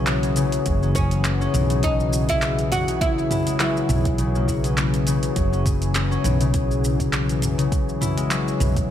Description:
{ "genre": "organic downtempo", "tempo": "102 BPM", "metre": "4/4", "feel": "swing 55% on 16ths", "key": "F# mixolydian", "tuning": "A4 = 439 Hz", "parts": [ { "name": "warm analog pad", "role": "sustained chords", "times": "0.0-8.9 s", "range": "E3 to G#4", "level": "-29 LUFS", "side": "equal", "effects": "lush chorus, sidechain pumping" }, { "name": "concert harp", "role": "arpeggios", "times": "0.0-8.9 s", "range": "C#3 to E4", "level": "-23 LUFS", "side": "left 3 dB", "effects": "tape echo" }, { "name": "woody fretless electric bass", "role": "bass", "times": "0.0-8.9 s", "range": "F#1 to B1", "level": "-24 LUFS", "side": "right 1 dB", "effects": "ensemble chorus, sidechain pumping" }, { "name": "deep house drum kit", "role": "drums", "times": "0.1-8.9 s", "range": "handclaps, hi-hat, shaker, toms", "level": "-27 LUFS", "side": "right 2 dB", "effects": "small room reverb" }, { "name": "electronic kick drum", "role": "drums", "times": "0.7-8.9 s", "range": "none", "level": "-25 LUFS", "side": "right 1 dB", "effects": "small room reverb" }, { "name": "oud", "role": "melody", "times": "1.0-4.4 s", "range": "C#4 to F#4", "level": "-26 LUFS", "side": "right 1 dB", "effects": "ping-pong delay" } ], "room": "light reverb", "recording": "none", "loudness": "-19 LUFS", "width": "side -10 dB against mid", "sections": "0.0-8.9 A section", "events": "none", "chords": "0.0 F#7sus4" }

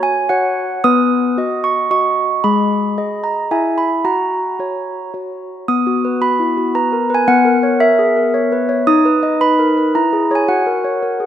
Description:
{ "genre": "classical, lullaby for handbells", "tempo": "112 BPM", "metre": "3/4", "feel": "straight", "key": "B major", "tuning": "A4 = 440 Hz", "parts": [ { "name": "handbells", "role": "solo", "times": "0.0-11.3 s", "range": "G#3 to D#6", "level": "-13 LUFS", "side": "equal", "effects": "none" } ], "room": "moderate plate reverb, RT60 3.1 s", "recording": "rough home demo mix", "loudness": "-13 LUFS", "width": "side -10 dB against mid", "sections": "0.0-5.7 A section; 5.7-11.3 B section", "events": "none", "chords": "0.0 F#5; 0.8 B; 2.4 G#m; 3.5 E; 4.1 F#; 5.7 B; 7.3 A#dim/B; 8.9 B/D#; 9.9 C#m/E; 10.5 F#" }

